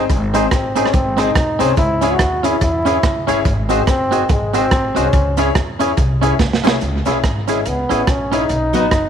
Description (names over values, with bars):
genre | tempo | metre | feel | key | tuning
ska | 143 BPM | 4/4 | swing 59% on 8ths | C# harmonic minor | A4 = 440 Hz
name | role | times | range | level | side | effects
clean electric guitar | accompaniment | 0.0-8.9 s | F#3 to G#4 | -22 LUFS | right 9 dB | none
clear upright piano | stabs | 0.0-8.9 s | B3 to C#5 | -21 LUFS | left 10 dB | none
upright bass | bass | 0.0-9.1 s | E1 to E2 | -22 LUFS | equal | none
crunchy breakbeat drum kit | drums | 0.1-9.0 s | hi-hat, kick drum, rim click, snare drum | -18 LUFS | right 1 dB | tape echo
cabasa | percussion | 0.1-9.0 s | none | -39 LUFS | left 11 dB | none
clear trombone | melody | 0.5-9.1 s | G#3 to F#4 | -20 LUFS | equal | none
room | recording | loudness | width
moderate echo chamber reverb, RT60 2.0 s | 1960s-style stereo with parts hard left and right, vinyl crackle | -14 LUFS | side -8 dB against mid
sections
0.0-6.8 A section; 6.8-9.1 B section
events
drum fill 6.4-6.8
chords
0.0 G#; 1.8 C#m; 3.5 G#7; 5.1 C#m; 8.5 B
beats
| 0.09 0.51 0.93 1.35 | 1.77 2.19 2.61 3.03 | 3.45 3.87 4.29 4.71 | 5.13 5.55 5.97 6.39 | 6.81 7.23 7.65 8.07 | 8.49 8.91